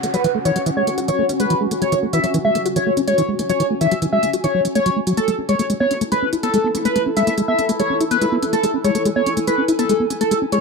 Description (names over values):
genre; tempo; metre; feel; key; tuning
psychedelic trance; 143 BPM; 4/4; straight; F# minor; A4 = 440 Hz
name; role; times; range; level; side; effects
liquid acid bass; riff; 0.0-10.6 s; E3 to F#4; -21 LUFS; equal; chorus, auto-pan, cassette tape, digital delay
electronic hi-hat; drums; 0.0-10.6 s; none; -31 LUFS; right 3 dB; none
downlifter; sound effects; 0.0-1.8 s; none; -40 LUFS; right 2 dB; none
granular cloud pad; texture; 0.0-10.6 s; C#4 to A5; -24 LUFS; left 1 dB; built-in reverb
overdriven synth lead; melody; 0.1-10.6 s; A4 to E5; -20 LUFS; left 1 dB; phaser, ping-pong delay
vowel-sweep wobble bass; second line; 5.8-8.4 s; B3 to E4; -31 LUFS; right 4 dB; none
room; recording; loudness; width
light reverb; none; -16 LUFS; side -4 dB against mid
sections
0.0-10.6 A section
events
none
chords
0.0 F#5; 5.2 A5